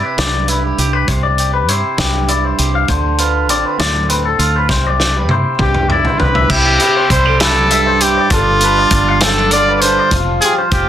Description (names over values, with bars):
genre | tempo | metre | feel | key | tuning
math rock and midwest emo | 66 BPM (dotted quarters) | 6/8 | straight | C major | A4 = 442 Hz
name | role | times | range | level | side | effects
twangy electric guitar | accompaniment | 0.0-10.9 s | G2 to G4 | -19 LUFS | right 8 dB | spring reverb
electric guitar through a small old amp | arpeggios | 0.0-10.9 s | E4 to F5 | -18 LUFS | left 8 dB | none
fingered electric bass | bass | 0.2-10.9 s | F1 to G2 | -18 LUFS | equal | none
loose indie drum kit | drums | 0.2-10.9 s | crash cymbal, hi-hat, kick drum, snare drum, toms | -17 LUFS | equal | none
clear trumpet | melody | 5.6-10.9 s | E4 to D5 | -14 LUFS | equal | none
room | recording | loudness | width
little or no reverb | dense, heavily limited modern master | -11 LUFS | side -10 dB against mid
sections
0.0-6.5 A section; 6.5-10.9 B section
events
drum fill 4.7-6.5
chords
0.0 Cmaj9; 2.9 Dm7; 4.7 C; 6.5 Cmaj7; 8.3 G9; 10.1 Fsus2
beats
0.18 | 1.09 1.99 | 2.90 3.80 | 4.70 5.61 | 6.51 7.41 | 8.32 9.22 | 10.12